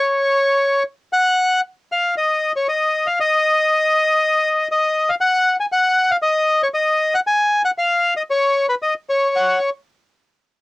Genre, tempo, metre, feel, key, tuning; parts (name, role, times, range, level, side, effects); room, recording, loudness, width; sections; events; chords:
tango; 117 BPM; 4/4; rubato; A4 = 441 Hz
bandoneon; solo; 0.0-9.7 s; B4 to G#5; -15 LUFS; left 1 dB; cassette tape
light reverb; home recording on cassette; -15 LUFS; side -21 dB against mid
0.0-9.3 A section; 9.3-10.6 B section